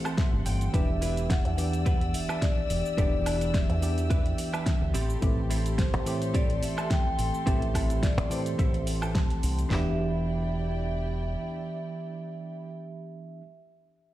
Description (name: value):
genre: nu-disco, nu disco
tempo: 107 BPM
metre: 4/4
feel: swing 54% on 16ths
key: E minor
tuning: A4 = 440 Hz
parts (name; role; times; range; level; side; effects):
- tine electric piano; accompaniment; 0.0-13.4 s; E3 to G4; -33 LUFS; equal; medium stereo tremolo, sidechain pumping
- dark studio string section; sustained chords; 0.0-12.7 s; E4 to E6; -41 LUFS; left 2 dB; sidechain pumping
- direct-recorded clean electric guitar; riff; 0.0-13.4 s; C4 to A5; -39 LUFS; right 2 dB; ensemble chorus, ping-pong delay
- pop drum kit; drums; 0.1-9.7 s; hi-hat, shaker, snare drum, woodblock; -35 LUFS; right 1 dB; none
- pop drum kit; drums; 0.2-9.9 s; handclaps, kick drum, snare drum, toms; -27 LUFS; equal; none
- fingered electric bass with an envelope filter; bass; 0.3-11.4 s; E1 to A2; -30 LUFS; equal; none
- vibraphone with medium mallets; melody; 0.7-13.4 s; C5 to G5; -36 LUFS; equal; digital delay
room: little or no reverb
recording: played on a big sound system in a bare room, stone room reverb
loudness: -25 LUFS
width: side -14 dB against mid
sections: 0.0-9.7 A section; 9.7-12.0 B section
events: drop 0.0-9.7; clean electric guitar fill 0.0-0.7, 8.0-9.7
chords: 0.0 Am7; 0.7 Em7; 4.9 Am7; 9.7 Em7